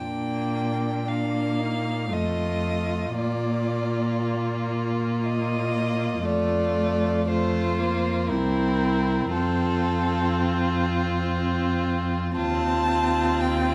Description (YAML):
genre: classical, slow romantic movement for string quartet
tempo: 58 BPM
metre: 3/4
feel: rubato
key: Bb major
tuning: A4 = 440 Hz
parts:
  - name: rich violin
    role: melody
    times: 0.0-13.7 s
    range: A4 to A5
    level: -32 LUFS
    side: equal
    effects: none
  - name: rich violin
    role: second line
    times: 0.0-13.7 s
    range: D4 to F4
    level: -32 LUFS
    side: equal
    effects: none
  - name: rich viola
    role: accompaniment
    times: 0.0-13.7 s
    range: A3 to C4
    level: -30 LUFS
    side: equal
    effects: none
  - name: rich cello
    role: bass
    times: 0.0-13.7 s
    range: C2 to Bb2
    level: -30 LUFS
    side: equal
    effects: none
room: moderate recital hall reverb, RT60 1.4 s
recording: vinyl crackle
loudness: -25 LUFS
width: mono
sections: 0.0-13.7 A section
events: none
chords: 0.0 Bb; 2.1 F7; 3.2 Bb; 6.3 F; 8.3 C7; 9.3 F; 12.4 F7/Eb